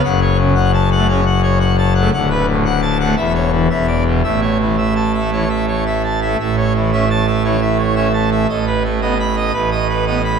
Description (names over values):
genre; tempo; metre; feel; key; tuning
classical, organ toccata; 114 BPM; 4/4; straight; A major; A4 = 438 Hz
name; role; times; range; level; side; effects
pipe organ, full organ; solo; 0.0-10.4 s; D1 to B5; -13 LUFS; equal; none
room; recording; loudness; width
wet church reverb, RT60 3.8 s; dark, warm production; -14 LUFS; side -6 dB against mid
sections
0.0-6.4 A section; 6.4-10.4 B section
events
none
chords
0.0 F#m; 2.1 Bm7/D; 3.2 C#m/E; 3.7 E5; 4.2 A; 8.5 B7/A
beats
| 0.04 0.56 1.08 1.60 | 2.12 2.65 3.17 3.70 | 4.24 4.78 5.32 5.86 | 6.40 6.93 7.45 7.97 | 8.50 9.03 9.55 10.07